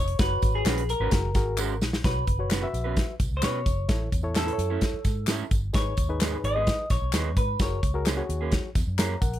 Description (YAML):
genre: uptempo 1960s-style soul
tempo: 130 BPM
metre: 4/4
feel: straight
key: B major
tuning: A4 = 441 Hz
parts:
  - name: semi-hollow electric guitar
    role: melody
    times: 0.0-8.3 s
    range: G#4 to D#5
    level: -31 LUFS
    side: equal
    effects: none
  - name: vintage muted fingered electric bass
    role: bass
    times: 0.0-9.4 s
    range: E#1 to B2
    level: -29 LUFS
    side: equal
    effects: none
  - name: natural country drum kit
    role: drums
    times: 0.1-9.4 s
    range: hi-hat, kick drum, snare drum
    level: -26 LUFS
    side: equal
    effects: none
  - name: barky reed electric piano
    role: accompaniment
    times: 0.2-9.4 s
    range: G#2 to A#5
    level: -33 LUFS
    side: left 4 dB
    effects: overdrive
  - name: tambourine and handclaps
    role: percussion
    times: 0.2-9.3 s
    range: none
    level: -38 LUFS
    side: left 2 dB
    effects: none
  - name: electric guitar through a small old amp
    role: stabs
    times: 0.7-9.1 s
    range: F#3 to B4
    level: -33 LUFS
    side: right 8 dB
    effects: none
room: little or no reverb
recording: none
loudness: -23 LUFS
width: side -12 dB against mid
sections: 0.0-2.0 A section; 2.0-9.4 B section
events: drum fill 1.6-2.0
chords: 0.2 F#sus4; 1.1 F#add9; 2.0 Bsus2; 3.9 A; 5.7 G#m; 7.6 F#add9